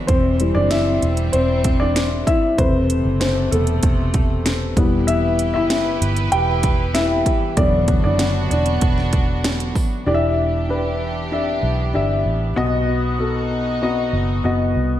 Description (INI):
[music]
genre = piano-driven pop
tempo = 96 BPM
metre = 4/4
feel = straight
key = E minor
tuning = A4 = 440 Hz
[part]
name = dark upright piano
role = accompaniment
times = 0.0-15.0 s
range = B2 to G5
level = -20 LUFS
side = left 2 dB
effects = slapback echo
[part]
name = warm studio string section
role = sustained chords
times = 0.0-15.0 s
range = C3 to B4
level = -28 LUFS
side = right 4 dB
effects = none
[part]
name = vintage muted fingered electric bass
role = bass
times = 0.1-15.0 s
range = E1 to C2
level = -21 LUFS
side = right 1 dB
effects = none
[part]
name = house drum kit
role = drums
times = 0.1-9.9 s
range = hi-hat, kick drum, snare drum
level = -21 LUFS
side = right 1 dB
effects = none
[sound]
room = wet recital hall reverb, RT60 1.3 s, small room ambience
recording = big arena sound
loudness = -16 LUFS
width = side -12 dB against mid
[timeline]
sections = 0.0-10.1 A section; 10.1-15.0 B section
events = upright piano solo 0.0-10.1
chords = 0.1 C/E; 2.6 Amadd9/E; 4.8 Em; 7.6 Bm/E; 10.1 Em7; 12.6 B